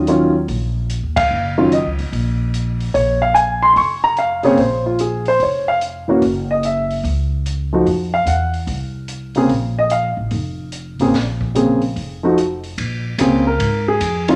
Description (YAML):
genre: jazz piano trio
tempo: 146 BPM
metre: 4/4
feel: swing 65% on 8ths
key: Bb minor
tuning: A4 = 439 Hz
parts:
  - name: dark upright piano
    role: melody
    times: 0.0-14.4 s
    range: Db3 to Db6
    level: -17 LUFS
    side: equal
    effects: none
  - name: upright bass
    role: bass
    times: 0.0-14.4 s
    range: F1 to Ab2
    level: -24 LUFS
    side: equal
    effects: none
  - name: open jazz drum kit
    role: drums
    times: 0.1-14.3 s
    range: hi-hat, kick drum, ride cymbal, snare drum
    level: -32 LUFS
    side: equal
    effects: none
room: moderate large studio reverb, RT60 1.1 s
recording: none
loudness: -18 LUFS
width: mono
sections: 0.0-12.8 A section; 12.8-14.4 B section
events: band accent 1.1; upright piano solo 12.8-14.4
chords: 0.0 Ebm9; 2.9 Bbm; 6.2 Gb5; 7.9 F5; 9.5 Bb5; 12.0 N.C.; 12.8 Bbm7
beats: 0.08 0.49 0.90 | 1.31 1.72 2.13 2.54 | 2.95 3.35 3.77 4.17 | 4.58 4.99 5.40 5.81 | 6.22 6.63 7.04 7.45 | 7.86 8.27 8.68 9.09 | 9.50 9.91 10.32 10.73 | 11.14 11.55 11.96 12.37 | 12.78 13.19 13.60 14.01